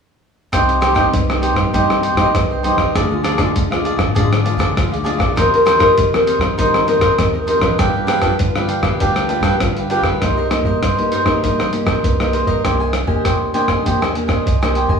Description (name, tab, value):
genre	samba and choro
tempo	99 BPM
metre	4/4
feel	straight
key	C minor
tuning	A4 = 440 Hz
part	cavaquinho	accompaniment	0.5-15.0 s	D4 to Ab5	-18 LUFS	equal	none
part	nylon-string guitar	accompaniment	0.5-15.0 s	G2 to B4	-19 LUFS	left 1 dB	none
part	upright bass	bass	0.5-15.0 s	Bb1 to G3	-22 LUFS	equal	none
part	lo-fi sampler-style drum kit	drums	0.5-15.0 s	hi-hat, kick drum, rim click	-19 LUFS	equal	none
room	wet studio reverb, RT60 0.8 s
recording	heard from further back in the room, studio reverb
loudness	-14 LUFS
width	side -6 dB against mid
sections	0.5-10.2 A section; 10.2-15.0 B section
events	none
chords	0.5 Cm; 3.0 Ddim; 5.4 Cm7/Eb; 7.8 G7; 10.2 Cm7; 12.6 Abmaj9#11/C